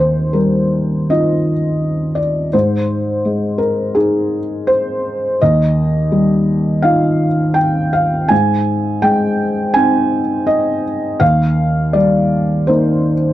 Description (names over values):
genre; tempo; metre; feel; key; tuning
neoclassical minimalist piano; 83 BPM; 4/4; rubato; Eb major; A4 = 440 Hz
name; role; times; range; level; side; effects
felt-muted upright piano; solo; 0.0-13.3 s; Eb2 to Ab5; -13 LUFS; equal; none
room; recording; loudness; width
small room ambience; dry, close 1970s-style studio recording; -13 LUFS; side -14 dB against mid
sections
0.0-13.3 A section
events
none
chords
0.0 Ebadd9; 2.5 Ab; 5.4 Ebadd9; 8.3 Ab; 11.2 Eb